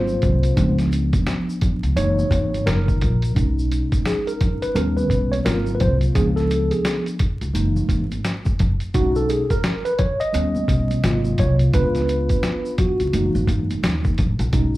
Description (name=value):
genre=hip hop, jazz-hop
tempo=86 BPM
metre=4/4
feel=swing 61% on 16ths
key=unclear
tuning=A4 = 440 Hz
part: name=mellow tine electric piano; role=accompaniment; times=0.0-14.8 s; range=B#2 to D#5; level=-22 LUFS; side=equal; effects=medium stereo tremolo, plate reverb, slapback echo
part: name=upright bass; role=bass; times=0.0-14.8 s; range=F#1 to F#2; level=-21 LUFS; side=equal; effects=none
part: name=congas and tube shaker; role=percussion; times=0.1-14.8 s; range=none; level=-32 LUFS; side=left 1 dB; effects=none
part: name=lo-fi sampler-style drum kit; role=drums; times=0.2-14.7 s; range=hi-hat, kick drum, snare drum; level=-22 LUFS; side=equal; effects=none
room=light reverb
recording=live gig heard through the venue's PA, club reverb, vinyl crackle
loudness=-18 LUFS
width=side -17 dB against mid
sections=0.0-3.4 A section; 3.4-14.8 A section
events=tine electric piano solo 0.0-3.4, 3.4-14.8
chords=0.0 G#13; 0.6 C#7b9; 2.0 F#13; 3.4 B6; 4.8 D#7b13; 5.5 G#13; 6.2 C#7b9; 7.6 F#13; 8.9 B6; 10.3 D#7b13; 11.0 G#13; 11.7 C#7b9; 13.1 F#13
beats=| 0.57 1.27 1.97 2.67 | 3.37 4.06 4.76 5.46 | 6.16 6.85 7.55 8.25 | 8.95 9.64 10.34 11.04 | 11.74 12.44 13.13 13.83 | 14.53